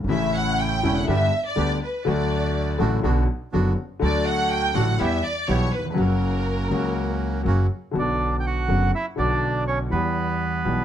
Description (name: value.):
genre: tango.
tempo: 122 BPM.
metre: 4/4.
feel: rubato.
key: B minor.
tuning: A4 = 440 Hz.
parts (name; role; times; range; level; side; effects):
warm concert grand piano; accompaniment; 0.0-10.8 s; E1 to G4; -24 LUFS; left 3 dB; none.
upright bass; bass; 0.0-10.8 s; E1 to E2; -25 LUFS; right 1 dB; none.
warm studio violin section; second line; 0.1-7.5 s; A#4 to G5; -26 LUFS; right 1 dB; none.
bandoneon; stabs; 0.1-7.7 s; A3 to G4; -30 LUFS; right 4 dB; none.
bandoneon; melody; 8.0-10.8 s; B3 to G5; -25 LUFS; right 4 dB; plate reverb.
room: light reverb.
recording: close, detailed microphones.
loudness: -20 LUFS.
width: side -10 dB against mid.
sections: 0.0-8.0 A section; 8.0-10.8 B section.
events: violin section solo 0.0-8.0.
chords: 0.1 A; 1.1 G; 2.1 D; 3.0 Bm; 4.0 D; 5.0 Em; 6.0 F#; 8.0 Bm; 9.9 Em.